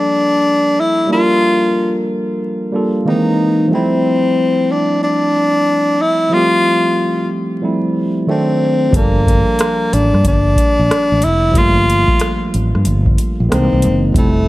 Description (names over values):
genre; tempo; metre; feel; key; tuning
R&B, neo-soul; 92 BPM; 4/4; swing 63% on 16ths; unclear; A4 = 435 Hz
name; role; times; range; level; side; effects
breathy tenor saxophone; melody; 0.0-14.5 s; A3 to F4; -14 LUFS; left 1 dB; none
barky tine electric piano; accompaniment; 0.0-14.5 s; D#3 to Bb4; -17 LUFS; right 1 dB; none
fretless electric bass; bass; 8.9-14.5 s; F1 to G2; -15 LUFS; equal; none
booming analog drum machine; drums; 8.9-14.3 s; hi-hat, kick drum, rim click; -17 LUFS; equal; none
room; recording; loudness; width
light reverb; vinyl crackle; -12 LUFS; side -18 dB against mid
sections
0.0-14.5 A section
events
none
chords
0.0 Gm9; 3.1 C7alt; 3.7 Fmaj7; 8.3 D7b9; 8.9 Gm9; 13.5 C7alt